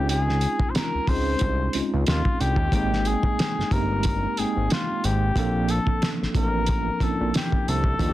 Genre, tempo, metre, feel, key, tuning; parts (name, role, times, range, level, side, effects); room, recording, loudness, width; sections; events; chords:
R&B, neo-soul; 91 BPM; 4/4; swing 56% on 16ths; A4 = 441 Hz
warm flugelhorn; melody; 0.0-8.1 s; F4 to C5; -28 LUFS; left 2 dB; plate reverb
mellow tine electric piano; accompaniment; 0.0-8.1 s; F3 to G5; -28 LUFS; right 2 dB; medium stereo tremolo, plate reverb
fat analog bass; bass; 0.0-8.1 s; G1 to Eb2; -25 LUFS; equal
cloth-damped thuddy drum kit; drums; 0.1-8.1 s; hi-hat, kick drum, snare drum; -25 LUFS; equal
light reverb; dense, heavily limited modern master; -21 LUFS; side -15 dB against mid
0.0-8.1 A section
0.0 Dbmaj9; 2.7 Abmaj9; 5.4 Bbmaj9